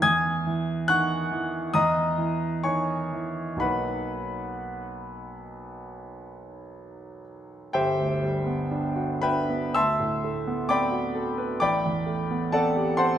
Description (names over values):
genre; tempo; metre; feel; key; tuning
classical, impressionist solo piano; 54-71 BPM; 4/4; rubato; B major, G major from 7.7 s; A4 = 440 Hz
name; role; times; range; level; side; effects
clear concert grand piano; solo; 0.0-13.2 s; G1 to G#6; -24 LUFS; equal; none
room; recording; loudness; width
moderate recital hall reverb, RT60 1.7 s; none; -24 LUFS; side -10 dB against mid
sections
0.0-7.7 A section; 7.7-13.2 B section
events
none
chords
0.1 Emaj9; 1.8 Emaj7; 3.6 Bmaj7; 7.7 Gmaj7; 9.8 D13; 11.6 Am11